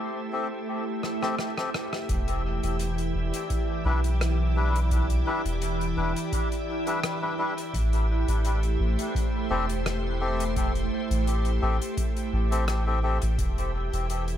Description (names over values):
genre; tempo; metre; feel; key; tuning
ambient dub; 85 BPM; 4/4; swing 53% on 16ths; A minor; A4 = 439 Hz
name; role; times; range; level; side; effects
soft additive organ-like pad; sustained chords; 0.0-14.4 s; E3 to D5; -31 LUFS; right 1 dB; ensemble chorus, built-in reverb
melodica; stabs; 0.3-13.2 s; G3 to E5; -32 LUFS; left 3 dB; dub echo
soft-mallet drum kit; drums; 1.0-14.4 s; hi-hat, rim click; -36 LUFS; left 2 dB; dub echo
soft dub sub bass; bass; 2.1-14.4 s; E1 to B1; -26 LUFS; equal; none
electronic kick drum; drums; 2.1-13.5 s; none; -30 LUFS; equal; overdrive
room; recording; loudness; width
light reverb, small room reverb; none; -24 LUFS; side -10 dB against mid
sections
0.0-2.1 A section; 2.1-14.4 B section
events
break 0.0-2.1; drum fill 1.0-2.1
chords
0.0 Am7; 2.1 Em7; 7.7 Am7; 13.4 Em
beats
0.68 1.39 | 2.09 2.80 3.50 4.21 | 4.92 5.62 6.33 7.03 | 7.74 8.45 9.15 9.86 | 10.56 11.27 11.97 12.68 | 13.39 14.09